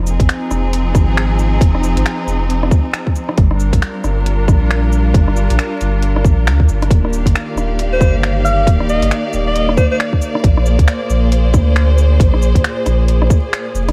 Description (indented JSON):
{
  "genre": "future garage",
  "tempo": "136 BPM",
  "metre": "4/4",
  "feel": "swing 60% on 16ths",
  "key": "F dorian",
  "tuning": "A4 = 435 Hz",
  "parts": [
    { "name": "bright studio string section", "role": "sustained chords", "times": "0.0-13.9 s", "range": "Bb2 to F5", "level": "-22 LUFS", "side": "equal", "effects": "sidechain pumping" },
    { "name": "warm sub bass", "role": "bass", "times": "0.0-13.9 s", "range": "Eb1 to D2", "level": "-17 LUFS", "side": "equal", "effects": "none" },
    { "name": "garage drum kit", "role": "drums", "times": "0.1-13.9 s", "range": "cabasa, finger snaps, hi-hat, rim click", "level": "-25 LUFS", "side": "equal", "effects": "none" },
    { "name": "electronic kick drum", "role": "drums", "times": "0.2-13.4 s", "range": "none", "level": "-15 LUFS", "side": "equal", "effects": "none" },
    { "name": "clear alto saxophone", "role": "melody", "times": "7.9-10.0 s", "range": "C5 to F5", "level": "-21 LUFS", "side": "equal", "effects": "analog delay" }
  ],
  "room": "digital ambience",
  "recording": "vinyl crackle",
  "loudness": "-14 LUFS",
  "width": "mono",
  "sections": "0.0-13.9 A section",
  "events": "break 13.5-13.9",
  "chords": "0.0 Fm7; 3.4 Gm7; 6.9 Ebmaj9; 10.4 Bb7",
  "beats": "0.29 0.73 1.17 | 1.61 2.06 2.50 2.94 | 3.38 3.82 4.26 4.70 | 5.14 5.59 6.03 6.47 | 6.91 7.35 7.79 8.23 | 8.67 9.12 9.56 10.00 | 10.44 10.88 11.32 11.76 | 12.20 12.64 13.09 13.53"
}